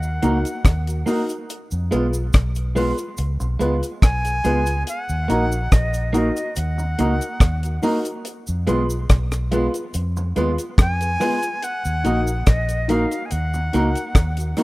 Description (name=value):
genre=roots reggae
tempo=71 BPM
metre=4/4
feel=straight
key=Eb minor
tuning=A4 = 440 Hz
part: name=bright reedy silver concert flute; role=melody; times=0.0-14.6 s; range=Eb5 to Ab5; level=-26 LUFS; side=equal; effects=dub echo
part: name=vintage muted fingered electric bass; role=bass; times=0.0-14.5 s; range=Bb1 to F2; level=-22 LUFS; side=equal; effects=none
part: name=cabasa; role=percussion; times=0.0-14.6 s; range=none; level=-38 LUFS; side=right 2 dB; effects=none
part: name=clean electric guitar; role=accompaniment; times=0.2-14.6 s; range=Ab3 to Gb4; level=-26 LUFS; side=right 2 dB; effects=spring reverb, dub echo
part: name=dark upright piano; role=stabs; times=0.2-14.6 s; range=Eb4 to Cb5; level=-26 LUFS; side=left 2 dB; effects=none
part: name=deep reggae drum kit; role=drums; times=0.2-14.6 s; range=hi-hat, kick drum, rim click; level=-16 LUFS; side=equal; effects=none
room=small room reverb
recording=rough home demo mix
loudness=-18 LUFS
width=side -20 dB against mid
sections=0.0-14.6 A section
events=none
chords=0.0 Ebm; 1.5 Fdim; 4.9 Ebm; 8.2 Fdim; 11.6 Ebm